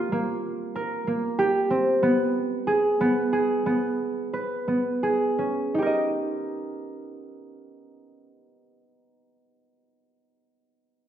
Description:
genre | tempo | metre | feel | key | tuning
contemporary instrumental, contemporary | 170-190 BPM (eighths) | 11/8 | straight | Eb mixolydian | A4 = 441 Hz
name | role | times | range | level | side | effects
concert harp | arpeggios | 0.0-8.8 s | Bb3 to Eb5 | -23 LUFS | right 1 dB | none
room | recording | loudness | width
wet recital hall reverb, RT60 1.4 s | dark, warm production | -22 LUFS | side -10 dB against mid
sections
0.0-5.7 A section; 5.7-9.6 B section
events
slowing down 0.4-5.7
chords
0.0 Bbsus2; 2.0 Abm; 5.7 Eb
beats
0.12 0.43 0.75 1.07 1.39 1.71 | 2.03 2.35 2.68 3.00 3.33 3.66 4.00 4.34 4.68 5.03 5.38 | 5.73 6.08 6.43 6.78 7.12 7.47 7.81 8.16 8.50

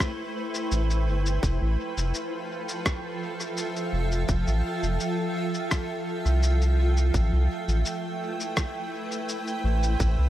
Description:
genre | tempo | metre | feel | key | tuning
ambient dub | 84 BPM | 4/4 | straight | unclear | A4 = 440 Hz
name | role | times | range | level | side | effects
granular cloud pad | sustained chords | 0.0-10.3 s | F3 to G5 | -30 LUFS | right 1 dB | built-in reverb
electronic kick drum | drums | 0.0-10.2 s | none | -27 LUFS | equal | overdrive, studio reverb
electronic rim click and cabasa | drums | 0.0-10.2 s | none | -32 LUFS | left 1 dB | studio reverb, dub echo
round analog bass | bass | 0.7-10.3 s | F1 to C2 | -23 LUFS | equal | none
room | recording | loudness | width
little or no reverb | none | -24 LUFS | side -13 dB against mid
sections
0.0-10.3 A section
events
none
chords
0.0 Am9; 1.4 Fmaj7; 7.1 Am9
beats
0.00 0.71 | 1.43 2.14 2.86 3.57 | 4.29 5.00 5.71 6.43 | 7.14 7.86 8.57 9.29 | 10.00

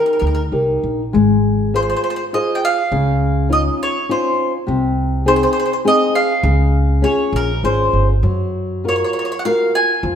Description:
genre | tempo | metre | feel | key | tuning
italian folk | 101 BPM | 3/4 | rubato | Ab major | A4 = 440 Hz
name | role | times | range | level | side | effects
mandolin | melody | 0.0-10.0 s | Bb4 to Ab5 | -19 LUFS | right 1 dB | none
flamenco guitar | accompaniment | 0.0-10.2 s | C3 to C5 | -18 LUFS | left 2 dB | none
upright bass | bass | 0.2-10.2 s | G1 to Gb2 | -18 LUFS | right 1 dB | none
room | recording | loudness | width
moderate recital hall reverb, RT60 1.6 s | none | -14 LUFS | side -8 dB against mid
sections
0.0-1.1 A section; 1.1-10.2 B section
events
none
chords
0.0 Eb; 1.1 Ab6; 2.9 Dbadd9; 4.7 Ab/C; 6.4 Db; 8.2 Gbmaj7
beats
0.52 | 1.14 1.74 2.34 | 2.92 3.51 4.09 | 4.68 5.26 5.85 | 6.44 7.04 7.64 | 8.24 8.85 9.45 | 10.04

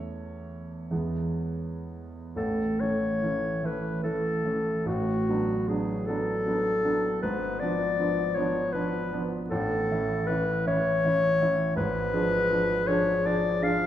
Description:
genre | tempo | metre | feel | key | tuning
classical, romantic duo for clarinet and grand piano | 40-55 BPM (dotted quarters) | 6/8 | rubato | A major | A4 = 440 Hz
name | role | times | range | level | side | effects
warm grand piano | accompaniment | 0.0-13.9 s | G#1 to C#5 | -28 LUFS | right 1 dB | none
mellow clarinet | melody | 2.4-13.9 s | F#4 to E#5 | -27 LUFS | left 2 dB | none
room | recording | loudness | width
wet recital hall reverb, RT60 1.4 s | heard from further back in the room | -25 LUFS | side -11 dB against mid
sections
0.0-2.4 A section; 2.4-13.9 B section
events
none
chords
0.0 A/E; 0.9 E; 2.4 A; 4.9 Bm7/A; 7.2 G#dim7; 9.5 A; 11.8 G#dim7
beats
0.91 | 2.36 3.63 | 4.87 6.07 | 7.22 8.35 | 9.51 10.66 | 11.77 12.87

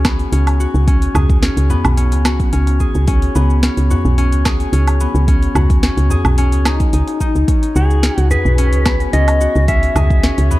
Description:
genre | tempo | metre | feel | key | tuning
organic downtempo | 109 BPM | 4/4 | straight | unclear | A4 = 440 Hz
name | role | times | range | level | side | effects
concert harp | arpeggios | 0.0-10.6 s | B3 to G#4 | -20 LUFS | left 2 dB | digital delay, shimmer reverb
woody FM bass | bass | 0.0-10.6 s | B1 to C#2 | -14 LUFS | equal | sidechain pumping
afro-pop drum kit | drums | 0.0-10.6 s | cabasa, hi-hat, snare drum, woodblock | -21 LUFS | right 1 dB | none
electronic kick drum | drums | 0.1-10.2 s | none | -16 LUFS | equal | none
darbuka | percussion | 0.1-10.6 s | none | -22 LUFS | equal | none
clean lap steel guitar | melody | 7.8-10.6 s | G#4 to E5 | -19 LUFS | left 1 dB | tape echo, shimmer reverb
room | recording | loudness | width
light reverb, small room ambience | dark, warm production | -12 LUFS | side -17 dB against mid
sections
0.0-10.6 A section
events
none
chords
0.0 F#sus2; 5.3 Badd9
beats
0.33 | 0.88 1.43 1.98 2.53 | 3.08 3.63 4.18 4.73 | 5.28 5.83 6.38 6.93 | 7.48 8.03 8.58 9.13 | 9.68 10.23

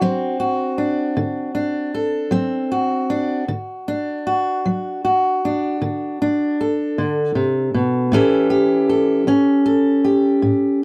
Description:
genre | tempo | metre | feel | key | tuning
blues | 52 BPM (dotted quarters) | 12/8 | straight | unclear | A4 = 443 Hz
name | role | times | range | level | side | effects
fingerpicked steel-string acoustic guitar | solo | 0.0-10.8 s | A2 to A4 | -19 LUFS | equal | none
room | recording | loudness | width
wet booth ambience, RT60 0.2 s | heard from further back in the room | -19 LUFS | mono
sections
0.0-10.8 A section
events
none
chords
0.0 D7; 8.1 A7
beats
0.00 1.16 2.32 | 3.48 4.63 5.79 6.96 | 8.12 9.28 10.44

